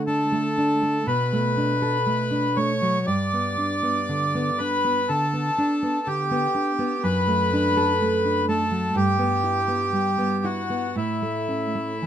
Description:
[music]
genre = romantic duo for bandoneon and classical guitar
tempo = 56-64 BPM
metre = 4/4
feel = rubato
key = D major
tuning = A4 = 438 Hz
[part]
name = bandoneon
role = melody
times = 0.0-12.1 s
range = E4 to D5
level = -24 LUFS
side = equal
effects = none
[part]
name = nylon-string guitar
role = accompaniment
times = 0.0-12.1 s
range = F#2 to A4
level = -24 LUFS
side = right 1 dB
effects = none
[sound]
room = light reverb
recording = minimal, uncompressed stereo recording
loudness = -21 LUFS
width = side -10 dB against mid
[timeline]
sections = 0.0-12.1 A section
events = none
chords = 0.0 D5; 1.1 Bm7; 3.1 G; 7.1 D/F#; 9.0 Em/G; 11.0 A

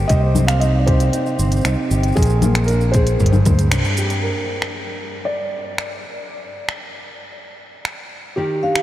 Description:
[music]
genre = folktronica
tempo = 116 BPM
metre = 4/4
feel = straight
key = C minor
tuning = A4 = 439 Hz
[part]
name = nylon-string guitar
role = arpeggios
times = 0.0-4.8, 8.4-8.8 s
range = G2 to Ab4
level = -22 LUFS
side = equal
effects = none
[part]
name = fingered electric bass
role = bass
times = 0.0-3.8 s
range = G1 to D2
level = -17 LUFS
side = equal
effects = none
[part]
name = felt-muted upright piano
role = melody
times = 0.1-8.8 s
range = G4 to F5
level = -25 LUFS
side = right 1 dB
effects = analog delay
[part]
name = electronic kick drum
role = drums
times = 0.1-3.6 s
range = none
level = -17 LUFS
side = equal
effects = none
[part]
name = organic electronic drum kit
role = drums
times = 0.1-8.8 s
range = congas, finger snaps, hi-hat, shaker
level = -25 LUFS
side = left 2 dB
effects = none
[part]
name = vibraphone with medium mallets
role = second line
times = 8.6-8.8 s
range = F5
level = -20 LUFS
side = left 1 dB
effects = none
[sound]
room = moderate huge ambient reverb, RT60 7.6 s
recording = dreamy mix soaked in reverb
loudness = -16 LUFS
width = side -13 dB against mid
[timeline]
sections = 0.0-4.2 A section; 4.2-8.8 B section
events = band accent 3.7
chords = 0.1 Cm; 2.2 Bb7; 3.2 Gsus4; 4.2 N.C.

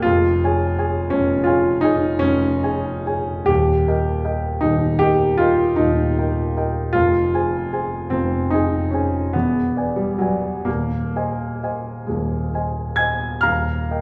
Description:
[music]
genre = classical, romantic nocturne for solo piano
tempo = 41-59 BPM (dotted quarters)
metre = 9/8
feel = rubato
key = unclear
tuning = A4 = 440 Hz
[part]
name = warm baby grand piano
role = solo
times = 0.0-14.0 s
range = Eb1 to Ab6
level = -20 LUFS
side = equal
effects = none
[sound]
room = wet recital hall reverb, RT60 1.5 s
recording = heard from further back in the room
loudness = -20 LUFS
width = mono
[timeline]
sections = 0.0-14.0 A section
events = none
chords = 0.0 Db/F; 3.5 Eb; 6.9 Fm; 9.3 E7; 10.7 Ab/Eb; 13.4 Eb

